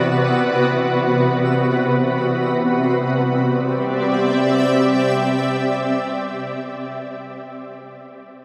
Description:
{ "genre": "ambient", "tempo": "free time", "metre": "none", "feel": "none", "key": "C lydian", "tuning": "A4 = 440 Hz", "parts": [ { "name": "shimmering ambient pad", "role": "sustained chords", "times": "0.0-7.3 s", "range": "C3 to E5", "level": "-20 LUFS", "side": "equal", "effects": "chorus, built-in reverb" }, { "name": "concert harp", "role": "arpeggios", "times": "0.0-6.8 s", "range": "none", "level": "barely audible", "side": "none", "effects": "none" }, { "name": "organ-like drone", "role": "drone", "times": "0.0-6.8 s", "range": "C3 to G3", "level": "-28 LUFS", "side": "equal", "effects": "ensemble chorus, built-in reverb" }, { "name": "twinkling granular texture", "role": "texture", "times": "0.0-2.9 s", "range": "E4 to E5", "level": "-36 LUFS", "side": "equal", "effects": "none" } ], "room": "wet huge ambient reverb, RT60 7.7 s", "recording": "none", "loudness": "-19 LUFS", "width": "mono", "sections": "0.0-2.8 A section; 2.8-7.5 B section", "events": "none", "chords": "0.0 Bm/C; 2.8 Cadd9" }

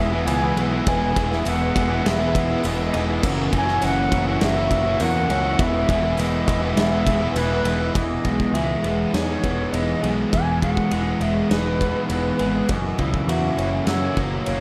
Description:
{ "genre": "rock, shoegaze and dream pop", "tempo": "102 BPM", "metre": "4/4", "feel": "straight", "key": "E lydian", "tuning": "A4 = 440 Hz", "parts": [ { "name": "mellow silver concert flute", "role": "melody", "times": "0.0-14.6 s", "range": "B4 to G#5", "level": "-28 LUFS", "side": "equal", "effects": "slapback echo, plate reverb" }, { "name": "glassy FM pad", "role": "sustained chords", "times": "0.0-7.9 s", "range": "A#4 to D#6", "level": "-37 LUFS", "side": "equal", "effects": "none" }, { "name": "direct-recorded clean electric guitar", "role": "arpeggios", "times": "0.0-14.6 s", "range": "E3 to G#4", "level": "-34 LUFS", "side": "equal", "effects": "none" }, { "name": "overdriven electric guitar", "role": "riff", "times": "0.0-14.6 s", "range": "F#2 to E4", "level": "-27 LUFS", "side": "equal", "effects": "analog chorus" }, { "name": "overdriven electric guitar", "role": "riff", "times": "0.0-14.6 s", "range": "E2 to G#4", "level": "-29 LUFS", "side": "equal", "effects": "reverse reverb" }, { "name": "picked electric bass", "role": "bass", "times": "0.0-14.6 s", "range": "E1 to F#2", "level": "-28 LUFS", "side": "equal", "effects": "none" }, { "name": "huge arena drum kit", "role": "drums", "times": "0.3-14.6 s", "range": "crash cymbal, kick drum, ride cymbal, snare drum", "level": "-28 LUFS", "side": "equal", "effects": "none" }, { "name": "tambourine", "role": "percussion", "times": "0.3-7.5 s", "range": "none", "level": "-43 LUFS", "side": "equal", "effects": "none" } ], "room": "wet studio reverb, RT60 0.6 s", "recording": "none", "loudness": "-21 LUFS", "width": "mono", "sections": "0.0-8.0 A section; 8.0-14.6 B section", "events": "none", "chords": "0.0 Emaj7; 3.2 F#7; 5.6 Emaj7; 12.7 F#7" }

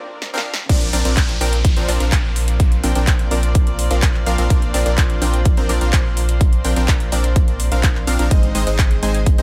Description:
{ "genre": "EDM, festival progressive house", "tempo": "126 BPM", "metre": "4/4", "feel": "straight", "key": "Bb mixolydian", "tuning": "A4 = 440 Hz", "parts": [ { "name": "supersaw stab", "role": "riff", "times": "0.0-9.4 s", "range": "F3 to Ab5", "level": "-25 LUFS", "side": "equal", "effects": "sidechain pumping, digital delay" }, { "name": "big-room dance drum kit", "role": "drums", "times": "0.2-9.4 s", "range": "crash cymbal, handclaps, hi-hat, snare drum", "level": "-27 LUFS", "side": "equal", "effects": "none" }, { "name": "rich chamber string section", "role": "sustained chords", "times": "0.7-9.4 s", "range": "Ab3 to Eb5", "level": "-31 LUFS", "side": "equal", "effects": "sidechain pumping" }, { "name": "saturated sub bass", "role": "bass", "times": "0.7-9.4 s", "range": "Ab1 to Bb1", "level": "-22 LUFS", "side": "equal", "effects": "sidechain pumping" }, { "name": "electronic kick drum", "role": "drums", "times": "0.7-9.4 s", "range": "none", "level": "-18 LUFS", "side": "equal", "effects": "none" }, { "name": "downlifter", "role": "sound effects", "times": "0.7-4.5 s", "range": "none", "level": "-32 LUFS", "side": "equal", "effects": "none" } ], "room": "little or no reverb", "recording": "high-pass filter", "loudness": "-17 LUFS", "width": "mono", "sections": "0.7-9.4 A section", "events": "break 0.0-0.7; drum fill 0.2-0.7; drop 0.7-9.4", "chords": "0.0 Bbadd9; 8.3 Ab" }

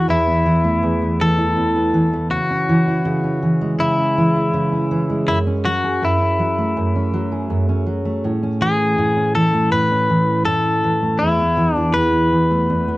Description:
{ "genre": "acoustic pop", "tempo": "81 BPM", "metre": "4/4", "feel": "straight", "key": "A major", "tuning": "A4 = 441 Hz", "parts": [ { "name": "direct-recorded clean electric guitar", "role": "melody", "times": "0.0-13.0 s", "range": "E4 to B4", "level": "-19 LUFS", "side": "left 2 dB", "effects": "none" }, { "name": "fingerpicked steel-string acoustic guitar", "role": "accompaniment", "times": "0.0-13.0 s", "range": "E2 to G#4", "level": "-18 LUFS", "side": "right 1 dB", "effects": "none" } ], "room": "light reverb", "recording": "worn, warbling old tape, cassette tape, warbly pitch drift", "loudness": "-15 LUFS", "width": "side -18 dB against mid", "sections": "0.0-13.0 A section", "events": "none", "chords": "0.0 Esus4; 2.3 C#m; 5.3 F#madd9; 8.2 Amaj7; 11.2 Esus4" }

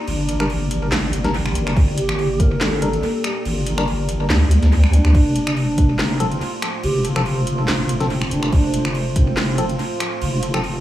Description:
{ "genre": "deep dubstep", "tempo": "142 BPM", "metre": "4/4", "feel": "swing 54% on 16ths, half-time", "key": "G minor", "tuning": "A4 = 441 Hz", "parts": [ { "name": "mellow hollow low ney", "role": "melody", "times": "0.0-10.8 s", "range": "C4 to Bb4", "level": "-25 LUFS", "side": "right 1 dB", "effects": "dub echo" }, { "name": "deep dark ambient pad", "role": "sustained chords", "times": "0.0-10.8 s", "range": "A3 to D5", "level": "-28 LUFS", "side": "equal", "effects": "chorus, built-in reverb" }, { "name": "deep soft wobble bass", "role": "bass", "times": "0.1-10.8 s", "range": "F1 to D2", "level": "-19 LUFS", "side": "equal", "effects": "chorus" }, { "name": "deep house drum kit", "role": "drums", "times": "0.1-10.7 s", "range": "crash cymbal, finger snaps, handclaps, hi-hat, snare drum", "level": "-24 LUFS", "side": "equal", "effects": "overdrive, analog delay" }, { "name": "percussive organ stab", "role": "stabs", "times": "0.4-10.6 s", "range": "F3 to Bb4", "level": "-27 LUFS", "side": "left 2 dB", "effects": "chorus, analog delay" }, { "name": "electronic kick drum", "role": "drums", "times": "1.8-2.5, 5.1-5.9, 8.5-9.2 s", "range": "none", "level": "-15 LUFS", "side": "equal", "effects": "overdrive" } ], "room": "light reverb, digital ambience", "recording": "echo-heavy mix, small room ambience", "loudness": "-16 LUFS", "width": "side -13 dB against mid", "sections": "0.0-10.8 A section", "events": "none", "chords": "0.0 Gm; 5.1 F" }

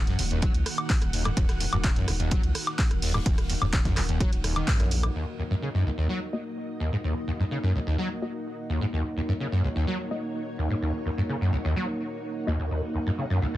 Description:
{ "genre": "acid house", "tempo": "127 BPM", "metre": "4/4", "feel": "straight", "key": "Eb minor", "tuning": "A4 = 440 Hz", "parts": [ { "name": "string machine, full ensemble", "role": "sustained chords", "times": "0.0-13.6 s", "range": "Eb3 to Gb5", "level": "-34 LUFS", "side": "equal", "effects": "ensemble chorus, sidechain pumping" }, { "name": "saturated sub bass", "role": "bass", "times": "0.0-5.1 s", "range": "Eb1 to Db2", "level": "-29 LUFS", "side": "equal", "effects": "sidechain pumping" }, { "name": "overdriven acid bass", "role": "riff", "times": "0.1-13.6 s", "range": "Eb1 to Gb3", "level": "-27 LUFS", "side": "equal", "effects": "ensemble chorus, sidechain pumping" }, { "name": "damped 70s drum kit", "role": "drums", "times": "0.1-5.0 s", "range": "hi-hat, ride cymbal, snare drum", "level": "-43 LUFS", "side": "right 3 dB", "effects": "sidechain pumping on cymbals, high-pass filter on cymbals, sidechain pumping on hats, high-pass filter on hats, high-pass filter on snare, high-pass filter on room" }, { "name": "punchy analog drum machine", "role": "drums", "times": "0.1-5.1 s", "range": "handclaps, hi-hat, rim click, woodblock", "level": "-30 LUFS", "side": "equal", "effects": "none" }, { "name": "electronic kick drum", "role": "drums", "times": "0.4-4.8 s", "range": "none", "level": "-24 LUFS", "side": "equal", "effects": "none" }, { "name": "filtered dub chord stab", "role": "stabs", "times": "6.3-12.6 s", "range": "Bb3 to Eb5", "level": "-35 LUFS", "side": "left 2 dB", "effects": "chorus, cassette tape, dub echo" } ], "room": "moderate small room ambience, RT60 0.5 s", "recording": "dense, heavily limited modern master", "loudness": "-24 LUFS", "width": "side -15 dB against mid", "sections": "0.0-5.1 A section; 5.1-13.6 B section", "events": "band accent 4.7", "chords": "0.0 Ebm" }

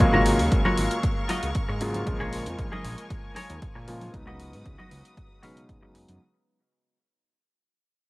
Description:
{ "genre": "nu-disco, nu disco", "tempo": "116 BPM", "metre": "4/4", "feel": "straight", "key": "unclear", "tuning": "A4 = 440 Hz", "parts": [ { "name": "bright electric grand piano", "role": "accompaniment", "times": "0.0-6.2 s", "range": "Db3 to F5", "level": "-28 LUFS", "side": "equal", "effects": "low-pass filter, cassette tape" }, { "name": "rich studio string section", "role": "sustained chords", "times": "0.0-6.2 s", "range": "Gb4 to Eb6", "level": "-36 LUFS", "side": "left 1 dB", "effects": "sidechain pumping, cassette tape" }, { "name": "semi-hollow electric guitar", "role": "riff", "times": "0.0-6.0 s", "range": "F4 to F5", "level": "-29 LUFS", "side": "left 1 dB", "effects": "lush chorus, low-pass filter, cassette tape" }, { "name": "fat analog bass", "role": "bass", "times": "0.0-6.2 s", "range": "Ab1 to Cb3", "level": "-31 LUFS", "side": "equal", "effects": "sidechain pumping" }, { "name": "electronic hi-hat", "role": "drums", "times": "0.0-6.2 s", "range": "none", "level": "-39 LUFS", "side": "equal", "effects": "small room ambience, cassette tape" }, { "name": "electronic kick drum", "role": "drums", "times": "0.0-5.8 s", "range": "none", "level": "-26 LUFS", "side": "equal", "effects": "small room ambience, cassette tape" }, { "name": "congas", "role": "percussion", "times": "0.1-6.2 s", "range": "none", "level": "-33 LUFS", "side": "right 1 dB", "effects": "none" } ], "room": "light reverb", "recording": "home recording on cassette", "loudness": "-23 LUFS", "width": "side -21 dB against mid", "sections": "0.0-6.2 A section", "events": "fade-out 0.0-6.2; filter sweep on electric grand piano 0.0-6.2", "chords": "0.0 Ab13sus4; 2.1 Bbm7; 4.1 Db9sus4" }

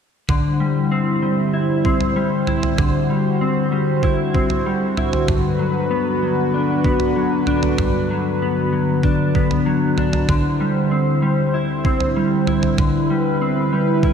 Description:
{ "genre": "dream pop", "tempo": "96 BPM", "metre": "4/4", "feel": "straight", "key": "D mixolydian", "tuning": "A4 = 440 Hz", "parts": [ { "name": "warm analog pad", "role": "sustained chords", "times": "0.4-14.1 s", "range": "D3 to C5", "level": "-20 LUFS", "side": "left 1 dB", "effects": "chorus" }, { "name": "mellow electric guitar", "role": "arpeggios", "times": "0.3-14.1 s", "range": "G2 to E4", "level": "-19 LUFS", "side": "left 1 dB", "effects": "analog chorus, ping-pong delay" }, { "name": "detuned 8-bit digital drum machine", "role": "drums", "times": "0.3-14.1 s", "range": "kick drum, toms", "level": "-21 LUFS", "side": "right 2 dB", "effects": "overdrive" } ], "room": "wet lush hall reverb, RT60 2.6 s", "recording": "bright 1980s-style digital production", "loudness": "-16 LUFS", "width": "side -7 dB against mid", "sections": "0.3-14.1 A section", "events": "none", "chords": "0.3 D9sus4; 5.3 Gmaj7; 10.3 D9sus4" }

